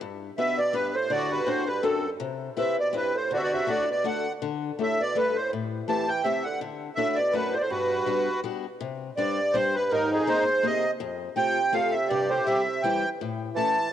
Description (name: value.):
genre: musette waltz.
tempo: 164 BPM.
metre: 3/4.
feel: swing 55% on 8ths.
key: G major, C major from 8.8 s.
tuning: A4 = 442 Hz.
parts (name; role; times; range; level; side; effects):
picked old ladder-braced acoustic guitar; accompaniment; 0.0-13.8 s; F2 to B4; -31 LUFS; left 8 dB; none.
accordion; melody; 0.4-13.9 s; Eb4 to A5; -25 LUFS; right 1 dB; light tremolo tuning, cassette tape.
warm bassoon; second line; 0.4-13.9 s; Eb2 to E3; -32 LUFS; right 6 dB; none.
room: moderate lush hall reverb, RT60 2.7 s.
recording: home recording on cassette.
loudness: -24 LUFS.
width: side -10 dB against mid.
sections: 0.0-8.8 A section; 8.8-13.9 B section.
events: none.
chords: 0.0 G; 1.1 D7; 2.2 Cmaj7; 3.3 D; 4.4 Dsus4; 5.5 Am7; 6.6 Dadd9; 7.7 Gmaj7; 8.8 Csus2; 9.9 Abadd9; 11.0 F; 12.1 C; 13.2 A7.